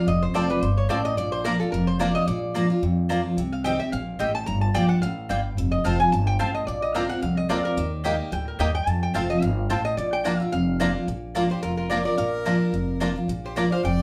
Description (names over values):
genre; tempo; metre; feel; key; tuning
bluegrass; 218 BPM; 4/4; swing 55% on 8ths; Bb major; A4 = 441 Hz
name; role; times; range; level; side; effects
lap resonator guitar; melody; 0.0-14.0 s; A4 to Bb5; -30 LUFS; equal; none
picked steel-string acoustic guitar; accompaniment; 0.0-14.0 s; F2 to G4; -28 LUFS; equal; none
upright bass; bass; 0.1-14.0 s; F1 to F2; -31 LUFS; equal; none
mandolin; stabs; 0.3-13.7 s; Bb3 to Bb5; -31 LUFS; equal; none
bluegrass banjo; melody; 0.4-2.1, 7.0-13.6 s; Bb3 to G4; -33 LUFS; equal; none
clear fiddle; second line; 11.5-14.0 s; F4 to D5; -34 LUFS; equal; none
room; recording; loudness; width
wet studio reverb, RT60 0.5 s; heard from further back in the room; -24 LUFS; mono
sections
0.0-2.3 A section; 2.3-11.1 A section; 11.1-14.0 B section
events
resonator guitar played with a steel bar solo 0.0-11.1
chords
0.1 F; 1.2 Bb; 3.4 Cm; 4.5 Gm7; 5.6 F; 6.7 Bbadd9; 7.8 Eb; 8.9 F; 10.0 Bb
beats
| 0.07 0.35 0.62 0.90 | 1.18 1.45 1.73 2.00 | 2.27 2.55 2.83 3.10 | 3.38 3.65 3.93 4.20 | 4.48 4.75 5.03 5.30 | 5.58 5.85 6.13 6.40 | 6.68 6.95 7.23 7.50 | 7.78 8.05 8.33 8.60 | 8.88 9.15 9.43 9.70 | 9.98 10.25 10.53 10.80 | 11.08 11.36 11.63 11.91 | 12.18 12.46 12.74 13.01 | 13.29 13.56 13.84